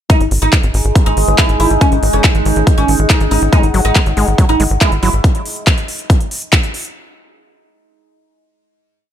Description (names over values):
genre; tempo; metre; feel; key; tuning
psychedelic trance; 140 BPM; 4/4; straight; unclear; A4 = 445 Hz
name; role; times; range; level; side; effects
oud; melody; 0.1-5.1 s; C#4 to E4; -19 LUFS; right 1 dB; phaser, sidechain pumping, digital delay
overtone-sweeping drone; sustained chords; 0.5-5.3 s; G#3 to D#4; -22 LUFS; right 1 dB; chorus, built-in reverb, phaser, sidechain pumping
big-room dance drum kit; drums; 0.1-6.9 s; handclaps, hi-hat; -18 LUFS; left 1 dB; none
electronic kick drum; drums; 0.1-6.6 s; none; -12 LUFS; equal; none
warbly tape-like pad; texture; 0.1-5.2 s; G#4 to G#5; -23 LUFS; equal; chorus, built-in reverb, sidechain pumping
tight sequencer bass; bass; 0.2-5.2 s; F#1 to G#1; -15 LUFS; equal; none
formant-sweep wobble bass; second line; 1.3-3.6 s; G#3 to C#4; -31 LUFS; left 5 dB; none
overdriven acid bass; riff; 3.5-5.1 s; F#3 to G#3; -21 LUFS; moving between left 5 dB and right 6 dB; auto-pan, sidechain pumping, digital delay
room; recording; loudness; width
little or no reverb; none; -10 LUFS; side -10 dB against mid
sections
0.1-7.0 groove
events
none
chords
0.1 G#5